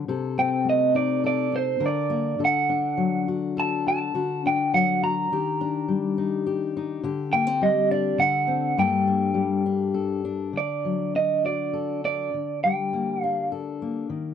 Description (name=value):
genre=acoustic folk-pop ballad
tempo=103 BPM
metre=3/4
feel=straight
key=G harmonic minor, G minor from 10.6 s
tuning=A4 = 438 Hz
part: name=fingerpicked steel-string acoustic guitar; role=accompaniment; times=0.0-14.3 s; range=G2 to Bb4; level=-25 LUFS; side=left 6 dB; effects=none
part: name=electric guitar through a small old amp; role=melody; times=0.4-13.5 s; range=C5 to Bb5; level=-24 LUFS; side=right 3 dB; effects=tremolo, slapback echo
room=light reverb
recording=dry, close 1970s-style studio recording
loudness=-22 LUFS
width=side -8 dB against mid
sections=0.0-10.6 A section; 10.6-14.3 B section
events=none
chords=0.1 Adim/C; 1.8 Bb/D; 2.4 D; 5.3 Ebmaj7; 7.0 D7sus4; 8.2 D7; 8.8 Gmadd9; 10.6 D; 12.3 Gmadd9/D